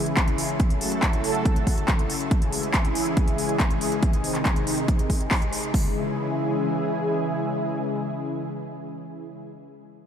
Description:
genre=uplifting trance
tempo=140 BPM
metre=4/4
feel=straight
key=C# harmonic minor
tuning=A4 = 440 Hz
part: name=analog string pad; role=sustained chords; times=0.0-9.4 s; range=B#2 to A4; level=-26 LUFS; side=equal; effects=ensemble chorus, sidechain pumping
part: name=techno drum kit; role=drums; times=0.1-5.7 s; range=handclaps, hi-hat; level=-29 LUFS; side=equal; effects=overdrive
part: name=techno drum kit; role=drums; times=0.2-5.8 s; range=hi-hat, kick drum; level=-23 LUFS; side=equal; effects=overdrive
room=moderate huge ambient reverb, RT60 3.9 s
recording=dreamy mix soaked in reverb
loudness=-22 LUFS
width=side -8 dB against mid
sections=0.0-5.7 A section; 5.7-9.2 B section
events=none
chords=0.0 C#m; 0.6 F#m7; 2.3 C#m; 4.0 G#; 5.7 C#m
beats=0.17 | 0.60 1.03 1.45 1.88 | 2.31 2.74 3.17 3.60 | 4.03 4.45 4.88 5.31 | 5.74 6.17 6.60 7.03 | 7.45 7.88 8.31 8.74

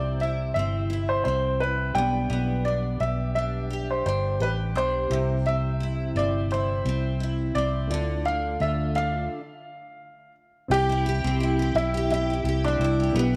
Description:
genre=acoustic pop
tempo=86 BPM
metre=4/4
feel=swing 55% on 16ths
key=C major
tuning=A4 = 440 Hz
part: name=warm upright piano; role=melody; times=0.0-13.1 s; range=D4 to G5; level=-30 LUFS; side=equal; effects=none
part: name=bright reed electric piano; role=accompaniment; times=0.0-13.4 s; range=G3 to E5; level=-39 LUFS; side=equal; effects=fast tremolo
part: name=picked steel-string acoustic guitar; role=accompaniment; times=0.0-13.4 s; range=C3 to G4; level=-32 LUFS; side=equal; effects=double-tracked
part: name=vintage muted fingered electric bass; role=bass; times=0.0-13.4 s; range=G1 to D2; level=-29 LUFS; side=equal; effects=none
room=moderate echo chamber reverb, RT60 2.4 s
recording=none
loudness=-25 LUFS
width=mono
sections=0.0-10.7 A section; 10.7-13.4 B section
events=stop 9.3-10.7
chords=0.0 C; 2.0 G/B; 5.1 C; 7.9 Dm; 10.7 C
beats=0.20 0.90 1.60 | 2.30 3.00 3.70 4.40 | 5.10 5.80 6.50 7.20 | 7.90 8.60 9.30 10.00 | 10.70 11.40 12.10 12.80

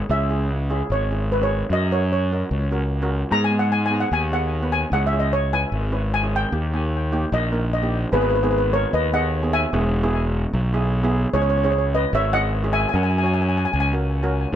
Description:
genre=calypso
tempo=150 BPM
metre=4/4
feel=straight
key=G# minor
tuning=A4 = 441 Hz
part: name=steel pan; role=melody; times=0.0-13.9 s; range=G#4 to A#5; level=-23 LUFS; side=equal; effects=ping-pong delay
part: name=steel pan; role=accompaniment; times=0.1-14.4 s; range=A#3 to C#5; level=-28 LUFS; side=right 2 dB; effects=none
part: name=fuzz fingered electric bass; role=bass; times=0.1-14.6 s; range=E1 to G#2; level=-21 LUFS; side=equal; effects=overdrive
room=light reverb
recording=none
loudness=-19 LUFS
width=side -10 dB against mid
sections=0.0-8.1 A section; 8.1-14.6 B section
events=steel pan solo 0.0-8.1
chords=0.0 C#m; 1.7 F#; 3.3 G#m; 4.9 C#m; 6.5 D#; 8.1 G#m; 9.7 E; 11.3 C#m; 12.9 F#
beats=| 0.10 0.50 0.90 1.30 | 1.71 2.11 2.51 2.91 | 3.31 3.71 4.12 4.52 | 4.92 5.32 5.72 6.12 | 6.53 6.93 7.33 7.73 | 8.13 8.53 8.93 9.33 | 9.73 10.13 10.53 10.93 | 11.33 11.73 12.13 12.53 | 12.93 13.33 13.73 14.13 | 14.53

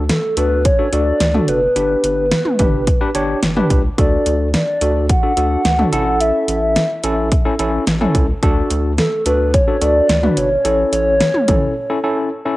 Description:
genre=synth-pop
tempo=108 BPM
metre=4/4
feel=straight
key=D major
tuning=A4 = 439 Hz
part: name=tine electric piano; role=accompaniment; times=0.0-12.6 s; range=C#4 to C#5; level=-20 LUFS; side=equal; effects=medium stereo tremolo, cassette tape
part: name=rubbery square bass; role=bass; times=0.0-11.7 s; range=F#1 to D2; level=-21 LUFS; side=equal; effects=none
part: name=hollow clarinet-like synth lead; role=melody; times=0.1-12.0 s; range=A4 to F#5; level=-18 LUFS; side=equal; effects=chorus, cassette tape, analog delay
part: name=pop drum kit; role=drums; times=0.1-11.6 s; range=hi-hat, kick drum, snare drum, toms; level=-17 LUFS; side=equal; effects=cassette tape
room=light reverb, digital ambience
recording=home recording on cassette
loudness=-13 LUFS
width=side -18 dB against mid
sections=0.0-12.6 A section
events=break 11.8-12.6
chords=0.0 D; 1.8 G; 4.0 D; 5.9 A; 8.4 D; 10.6 A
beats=0.09 0.65 1.21 | 1.76 2.32 2.87 3.43 | 3.98 4.54 5.09 5.65 | 6.21 6.76 7.32 7.87 | 8.43 8.98 9.54 10.09 | 10.65 11.21 11.76 12.32

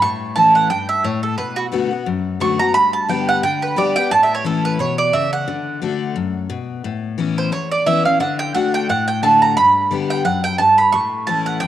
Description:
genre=bluegrass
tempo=176 BPM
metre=4/4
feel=swing 56% on 8ths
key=unclear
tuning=A4 = 438 Hz
part: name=mandolin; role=melody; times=0.0-11.7 s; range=F#4 to C#6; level=-15 LUFS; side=right 3 dB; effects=cassette tape
part: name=picked steel-string acoustic guitar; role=accompaniment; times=0.0-11.7 s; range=E2 to G4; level=-21 LUFS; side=left 6 dB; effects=cassette tape
room=light reverb, studio ambience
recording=home recording on cassette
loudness=-15 LUFS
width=side -11 dB against mid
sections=0.0-6.8 A section; 6.8-11.7 A section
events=none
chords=0.0 A; 1.4 Bm7; 2.8 G; 4.1 A; 5.5 D; 6.8 Aadd9; 8.2 D; 9.6 G; 10.9 A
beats=| 0.03 0.37 0.71 1.05 | 1.39 1.73 2.07 2.41 | 2.75 3.10 3.44 3.78 | 4.12 4.46 4.80 5.14 | 5.48 5.82 6.16 6.50 | 6.85 7.19 7.53 7.87 | 8.21 8.55 8.89 9.23 | 9.57 9.91 10.25 10.59 | 10.93 11.28 11.62

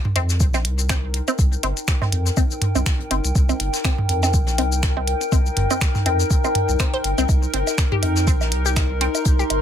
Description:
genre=minimal techno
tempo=122 BPM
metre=4/4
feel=swing 56% on 16ths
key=C minor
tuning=A4 = 440 Hz
part: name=warbly tape-like pad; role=texture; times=0.4-9.6 s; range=Eb4 to C6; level=-25 LUFS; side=left 2 dB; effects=chorus, built-in reverb, phaser, sidechain pumping
part: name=electronic toms and woodblock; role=percussion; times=0.1-9.6 s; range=none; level=-25 LUFS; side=right 2 dB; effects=none
part: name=resonant blip pluck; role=riff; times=0.2-9.4 s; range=C4 to C5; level=-26 LUFS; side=left 1 dB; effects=phaser, sidechain pumping, ping-pong delay
part: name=saturated sub bass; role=bass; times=0.2-9.6 s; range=G1 to F2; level=-22 LUFS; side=equal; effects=tube saturation, sidechain pumping
part: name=minimal click drum kit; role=drums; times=0.2-9.6 s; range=finger snaps, hi-hat, shaker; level=-26 LUFS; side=left 2 dB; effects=overdrive
part: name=soft brush drum kit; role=drums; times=0.2-9.6 s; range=hi-hat, snare drum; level=-35 LUFS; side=left 1 dB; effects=high-pass filter on hats, high-pass filter on snare, high-pass filter on room
part: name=electronic kick drum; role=drums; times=0.4-9.4 s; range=none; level=-19 LUFS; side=equal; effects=none
room=little or no reverb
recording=none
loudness=-18 LUFS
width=side -9 dB against mid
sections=0.0-9.6 A section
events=none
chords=0.0 Cm7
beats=0.40 0.90 | 1.39 1.88 2.37 2.86 | 3.35 3.85 4.34 4.83 | 5.32 5.81 6.30 6.80 | 7.29 7.78 8.27 8.76 | 9.26

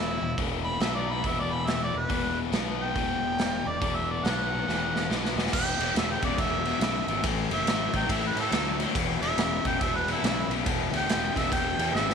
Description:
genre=blues rock power trio and southern rock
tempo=140 BPM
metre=4/4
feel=swing 63% on 8ths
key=E mixolydian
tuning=A4 = 436 Hz
part: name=clear harmonica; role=melody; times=0.0-12.1 s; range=E4 to B5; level=-30 LUFS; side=right 2 dB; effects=overdrive
part: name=crunchy overdriven guitar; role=riff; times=0.0-12.1 s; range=E2 to B3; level=-30 LUFS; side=left 12 dB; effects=none
part: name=fuzz fingered electric bass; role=bass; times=0.0-12.1 s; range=E1 to A2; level=-34 LUFS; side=right 2 dB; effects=overdrive
part: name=raw garage drum kit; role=drums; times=0.4-12.1 s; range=crash cymbal, hi-hat, kick drum, ride cymbal, snare drum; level=-29 LUFS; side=right 2 dB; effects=none
part: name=bright tonewheel organ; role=sustained chords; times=5.5-12.1 s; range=E4 to E5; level=-39 LUFS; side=right 11 dB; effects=slow rotary speaker, chorus vibrato
room=moderate spring reverb, RT60 1.9 s, small room ambience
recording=1960s-style stereo with parts hard left and right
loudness=-25 LUFS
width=side -6 dB against mid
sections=0.0-5.5 A section; 5.5-12.1 B section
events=drum fill 4.7-5.5, 11.9; harmonica solo 5.5-12.1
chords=0.0 E5; 0.8 B5; 1.2 E5; 2.5 B5; 3.0 E5; 4.2 B5; 4.7 E5; 5.5 E; 7.2 A; 8.9 E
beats=| 0.37 0.80 1.23 1.66 | 2.09 2.52 2.95 3.38 | 3.81 4.24 4.67 5.10 | 5.53 5.95 6.38 6.81 | 7.24 7.67 8.09 8.52 | 8.95 9.37 9.80 10.23 | 10.66 11.08 11.51 11.94

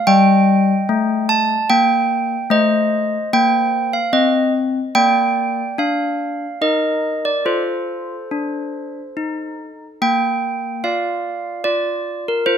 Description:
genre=classical, tune for handbells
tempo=74 BPM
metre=3/4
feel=straight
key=Bb major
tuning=A4 = 439 Hz
part: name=handbells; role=solo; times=0.0-12.6 s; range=G3 to A5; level=-16 LUFS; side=equal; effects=none
room=light reverb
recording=close, detailed microphones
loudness=-16 LUFS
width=side -8 dB against mid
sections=0.0-10.0 A section; 10.0-12.6 B section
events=none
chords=0.1 Eb/G; 2.5 Am7b5; 4.9 Bb; 6.6 Eb5; 7.4 F; 10.0 Bb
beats=| 0.08 0.88 1.69 | 2.50 3.31 4.12 | 4.94 5.77 6.60 | 7.45 8.30 9.16 | 10.01 10.83 11.64 | 12.46

